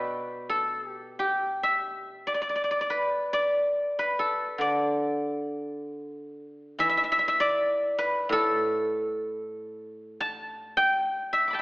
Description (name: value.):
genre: chinese traditional, Chinese solo plucked strings.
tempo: 66-73 BPM.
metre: 2/4.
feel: rubato.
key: D zhi mode.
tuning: A4 = 438 Hz.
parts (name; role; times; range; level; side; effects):
guzheng; solo; 0.0-11.6 s; A2 to D6; -25 LUFS; equal; none.
room: moderate scoring stage reverb, RT60 1.8 s.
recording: recorded in a church or concert hall, AM radio sound.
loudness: -24 LUFS.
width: side -22 dB against mid.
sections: 0.0-6.8 A section; 6.8-11.6 B section.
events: none.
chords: none.